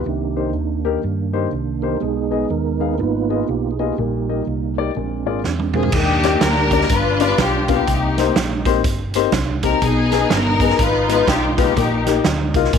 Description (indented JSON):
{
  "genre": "uptempo gospel",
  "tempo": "123 BPM",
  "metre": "4/4",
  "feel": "swing 61% on 8ths",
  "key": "Eb major",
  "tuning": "A4 = 438 Hz",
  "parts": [
    { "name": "mellow tonewheel organ", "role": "sustained chords", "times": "0.0-5.9 s", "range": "Eb3 to Cb5", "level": "-23 LUFS", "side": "right 12 dB", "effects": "chorus vibrato, stopped rotary speaker" },
    { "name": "hollow-body short-scale fingered electric bass", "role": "bass", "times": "0.0-12.8 s", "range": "G1 to G2", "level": "-23 LUFS", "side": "equal", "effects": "none" },
    { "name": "dark concert grand piano", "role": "accompaniment", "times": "0.1-12.8 s", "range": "G2 to F5", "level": "-22 LUFS", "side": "left 14 dB", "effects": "none" },
    { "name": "swinging big-band drum kit", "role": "drums", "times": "5.4-12.8 s", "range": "crash cymbal, hi-hat, kick drum, snare drum, toms", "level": "-20 LUFS", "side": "right 3 dB", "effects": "none" },
    { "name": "warm studio string section", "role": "melody", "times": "5.7-12.5 s", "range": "Bb3 to B4", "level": "-19 LUFS", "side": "left 2 dB", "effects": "none" }
  ],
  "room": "light reverb, studio reverb",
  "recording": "1960s-style stereo with parts hard left and right",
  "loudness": "-16 LUFS",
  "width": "side -7 dB against mid",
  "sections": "0.0-5.9 A section; 5.9-12.8 B section",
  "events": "tonewheel organ solo 0.0-5.9; drum fill 5.4-5.9",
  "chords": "0.1 Cm7; 2.0 Abm/Cb; 3.0 Abm6; 4.0 Eb/Bb; 5.0 Bb7; 5.9 Ebmaj7; 6.9 G7; 7.9 Cm7; 9.8 Abm/Cb; 10.8 Abm6; 11.8 Eb/Bb"
}